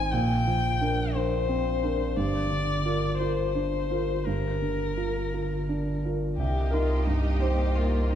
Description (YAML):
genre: neoclassical piano and strings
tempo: 58 BPM (dotted quarters)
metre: 6/8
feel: rubato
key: C minor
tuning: A4 = 439 Hz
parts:
  - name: warm violin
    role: melody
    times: 0.0-8.2 s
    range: Eb4 to Ab5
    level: -30 LUFS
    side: left 5 dB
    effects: none
  - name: warm grand piano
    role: accompaniment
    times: 0.0-8.2 s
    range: C2 to C5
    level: -28 LUFS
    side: right 2 dB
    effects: none
  - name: saturated sub bass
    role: bass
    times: 0.0-8.2 s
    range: G1 to C2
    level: -29 LUFS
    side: equal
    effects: none
  - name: rich studio string section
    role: sustained chords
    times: 6.4-8.2 s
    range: Bb3 to Eb5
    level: -36 LUFS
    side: equal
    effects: none
room: wet scoring stage reverb, RT60 1.7 s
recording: recorded in a church or concert hall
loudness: -24 LUFS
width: side -10 dB against mid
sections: 0.0-6.4 A section; 6.4-8.2 B section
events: none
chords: 0.1 Bbadd9; 2.2 Gm7; 6.4 Cm7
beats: | 0.12 1.14 | 2.16 3.19 | 4.26 5.32 | 6.38 7.42